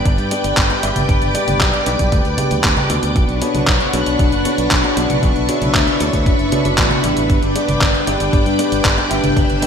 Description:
italo disco; 116 BPM; 4/4; straight; A4 = 440 Hz
string machine, full ensemble; sustained chords; 0.0-9.7 s; D4 to E6; -18 LUFS; left 1 dB; ensemble chorus
dark baby grand piano; stabs; 0.0-9.7 s; G2 to E5; -22 LUFS; equal; ping-pong delay
modern bright fingered electric bass; bass; 0.0-9.6 s; F#1 to G2; -22 LUFS; equal
detuned 8-bit digital drum machine; drums; 0.1-9.7 s; congas, handclaps, hi-hat; -20 LUFS; equal; overdrive, gated reverb
electronic kick drum; drums; 0.1-9.5 s; -17 LUFS; equal; overdrive
wet lush hall reverb, RT60 1.8 s, digital ambience; bright 1980s-style digital production; -13 LUFS; side -7 dB against mid
0.0-9.7 A section
0.0 G; 3.2 Bmadd9; 7.3 G

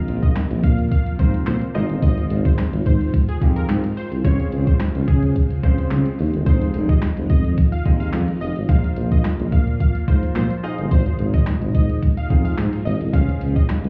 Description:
dance-pop; 108 BPM; 4/4; straight; A4 = 440 Hz
clear grand piano; accompaniment; 0.0-13.7 s; Ab3 to F5; -32 LUFS; equal; sidechain pumping
phased string machine; sustained chords; 0.0-13.9 s; Bb2 to C5; -30 LUFS; equal; ensemble chorus, phaser, sidechain pumping
mellow tuba; bass; 0.1-13.9 s; F1 to Db3; -23 LUFS; equal; sidechain pumping
clean 12-bit digital drum machine; drums; 0.1-13.9 s; handclaps, hi-hat, kick drum, snare drum; -20 LUFS; equal
plucky unison lead; melody; 0.2-13.7 s; Ab4 to F5; -36 LUFS; equal; sidechain pumping, dub echo
little or no reverb; heard muffled through a wall, club reverb, EQ; -19 LUFS; mono
0.0-13.9 A section
0.0 Bbsus2; 1.7 Ab6; 4.2 Dbmaj7; 6.5 Fm7; 8.7 Bbsus2; 10.6 Ab6; 13.1 Dbmaj7

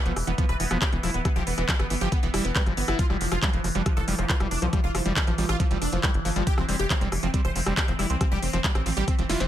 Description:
psychedelic trance; 138 BPM; 4/4; straight; A4 = 440 Hz
overtone-sweeping drone; sustained chords; 0.0-9.5 s; E3; -33 LUFS; right 1 dB; chorus, built-in reverb, sidechain pumping
supersaw stab; melody; 0.1-9.5 s; F3 to C5; -31 LUFS; right 1 dB; phaser, sidechain pumping, tape echo
overdriven acid bass; riff; 0.1-9.4 s; E3 to F4; -32 LUFS; moving between left 6 dB and right 5 dB; distortion, auto-pan, sidechain pumping, tape echo
tight sequencer bass; bass; 0.1-9.5 s; D1 to C2; -28 LUFS; equal
techno drum kit; drums; 0.1-9.5 s; handclaps, hi-hat, rim click, snare drum; -30 LUFS; equal
electronic kick drum; drums; 0.4-9.2 s; -24 LUFS; equal; overdrive
vowel-sweep wobble bass; second line; 4.2-4.7 s; B3; -41 LUFS; right 4 dB
digital ambience; -22 LUFS; side -12 dB against mid
0.0-9.5 A section
drum fill 9.3
0.0 E5; 3.0 F5

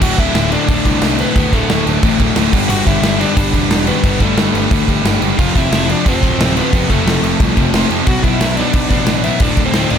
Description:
punk rock; 179 BPM; 4/4; straight; A4 = 445 Hz
overdriven semi-hollow guitar; melody; 0.0-10.0 s; A3 to F#5; -20 LUFS; left 3 dB
distorted electric guitar; riff; 0.0-10.0 s; D2 to B3; -18 LUFS; right 16 dB; distortion
sludgy distorted guitar; riff; 0.0-10.0 s; D2 to B3; -19 LUFS; left 13 dB; overdrive
fuzz picked electric bass; bass; 0.0-10.0 s; D1 to F2; -20 LUFS; equal; overdrive
big rock drum kit; drums; 0.0-10.0 s; crash cymbal, kick drum, snare drum; -16 LUFS; equal
light reverb; -11 LUFS; side -8 dB against mid
0.0-10.0 A section
0.0 D5; 2.5 G; 5.4 F; 8.1 Bm; 9.4 D5

